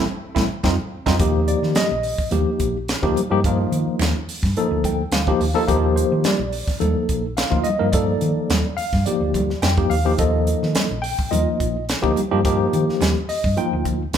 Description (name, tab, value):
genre	electric jazz fusion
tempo	107 BPM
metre	4/4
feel	straight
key	Eb lydian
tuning	A4 = 440 Hz
part	barky tine electric piano	accompaniment	0.0-14.0 s	F3 to G5	-21 LUFS	left 1 dB	fast stereo tremolo
part	hollow-body short-scale fingered electric bass	bass	0.0-14.2 s	A1 to Eb3	-23 LUFS	equal	none
part	crisp fusion drum kit	drums	0.4-14.2 s	hi-hat, kick drum, snare drum	-24 LUFS	right 1 dB	none
part	congas	percussion	0.4-14.2 s	none	-28 LUFS	right 4 dB	none
room	moderate large studio reverb, RT60 1.4 s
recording	band playing live in one room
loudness	-18 LUFS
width	side -8 dB against mid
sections	0.0-1.2 A section; 1.2-14.2 B section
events	band accent 0.0-1.2; tine electric piano fill 4.6-5.7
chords	0.0 Am; 0.6 F5; 1.2 Ebmaj9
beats	0.09 0.65 | 1.20 1.76 2.32 2.88 | 3.44 4.00 4.56 5.13 | 5.69 6.25 6.81 7.38 | 7.94 8.50 9.06 9.63 | 10.19 10.76 11.32 11.88 | 12.45 13.01 13.57 14.14